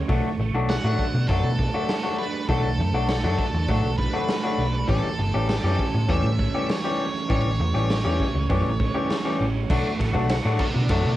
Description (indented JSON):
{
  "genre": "indie rock",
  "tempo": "100 BPM",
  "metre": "4/4",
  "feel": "straight",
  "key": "unclear",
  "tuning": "A4 = 441 Hz",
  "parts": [
    { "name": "crunchy overdriven guitar", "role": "riff", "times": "0.0-11.2 s", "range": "E3 to G4", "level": "-31 LUFS", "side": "right 7 dB", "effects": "ensemble chorus" },
    { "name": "hollow-body short-scale picked electric bass", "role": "bass", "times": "0.0-11.2 s", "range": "G1 to B2", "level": "-24 LUFS", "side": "equal", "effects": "none" },
    { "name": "electric guitar through a small old amp", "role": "riff", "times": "0.1-11.1 s", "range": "E3 to G4", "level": "-27 LUFS", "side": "left 4 dB", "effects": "none" },
    { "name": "raw garage drum kit", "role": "drums", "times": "0.1-11.0 s", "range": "crash cymbal, hi-hat, kick drum, ride cymbal, snare drum", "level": "-27 LUFS", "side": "equal", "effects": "cassette tape" },
    { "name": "octave-fuzz lead guitar", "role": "melody", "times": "0.7-11.2 s", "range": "A4 to F#5", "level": "-32 LUFS", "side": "right 2 dB", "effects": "distortion, cassette tape, analog delay" },
    { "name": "combo organ", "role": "sustained chords", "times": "9.7-11.2 s", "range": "D3 to F#4", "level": "-35 LUFS", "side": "right 3 dB", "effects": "none" }
  ],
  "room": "little or no reverb",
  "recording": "home recording on cassette",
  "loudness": "-21 LUFS",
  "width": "side -14 dB against mid",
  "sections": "0.0-9.7 A section; 9.7-11.2 B section",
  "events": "lead electric guitar solo 9.7-11.2",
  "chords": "0.1 Bm7; 4.9 A7; 9.7 Bm7"
}